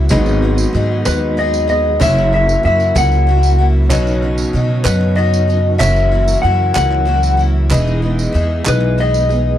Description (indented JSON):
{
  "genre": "indie folk with a building arrangement",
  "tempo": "63 BPM (dotted quarters)",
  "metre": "6/8",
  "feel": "straight",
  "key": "unclear",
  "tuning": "A4 = 438 Hz",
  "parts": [
    { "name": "clear upright piano", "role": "accompaniment", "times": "0.0-9.6 s", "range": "F#1 to D#5", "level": "-24 LUFS", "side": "right 3 dB", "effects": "none" },
    { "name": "picked twelve-string acoustic guitar", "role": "accompaniment", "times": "0.0-9.6 s", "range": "F#2 to G#4", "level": "-22 LUFS", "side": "left 6 dB", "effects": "none" },
    { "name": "mellow tonewheel organ", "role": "sustained chords", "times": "0.0-9.6 s", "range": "C#3 to F#4", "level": "-24 LUFS", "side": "right 3 dB", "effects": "chorus vibrato, fast rotary speaker" },
    { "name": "upright bass", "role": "bass", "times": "0.0-9.6 s", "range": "E1 to B2", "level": "-15 LUFS", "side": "equal", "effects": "none" },
    { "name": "cajon", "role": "drums", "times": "0.1-9.4 s", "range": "none", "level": "-20 LUFS", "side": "equal", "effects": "none" },
    { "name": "tambourine", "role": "percussion", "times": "0.1-9.4 s", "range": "none", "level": "-28 LUFS", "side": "right 7 dB", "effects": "none" },
    { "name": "electric guitar through a small old amp", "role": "melody", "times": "1.1-9.6 s", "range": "B4 to F#5", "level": "-16 LUFS", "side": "left 2 dB", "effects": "harmonic tremolo" },
    { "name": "group handclap", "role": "percussion", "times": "3.9-8.9 s", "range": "none", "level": "-24 LUFS", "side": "right 5 dB", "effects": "none" }
  ],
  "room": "small room reverb",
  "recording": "dark, warm production",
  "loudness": "-12 LUFS",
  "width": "side -11 dB against mid",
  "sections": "0.0-9.6 A section",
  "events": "none",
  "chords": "0.1 G#m7; 2.0 F#7; 3.9 Badd9; 5.8 F#7; 7.7 Emaj7"
}